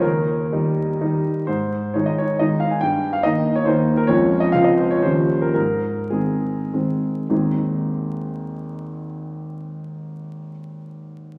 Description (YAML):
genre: classical, romantic triple-time dance for piano with dotted rhythms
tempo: 96-146 BPM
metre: 3/4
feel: rubato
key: Ab major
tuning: A4 = 439 Hz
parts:
  - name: warm grand piano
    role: solo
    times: 0.0-11.4 s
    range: Ab1 to Ab5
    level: -21 LUFS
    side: equal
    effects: none
room: wet recital hall reverb, RT60 1.8 s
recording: vinyl crackle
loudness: -20 LUFS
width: mono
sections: 0.0-7.3 A section; 7.3-10.6 B section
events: slowing down 3.5-7.3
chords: 0.0 Eb; 1.5 Ab; 2.8 Eb/G; 4.1 Db/F; 4.5 Dbmaj7; 5.0 Eb9; 5.6 Ab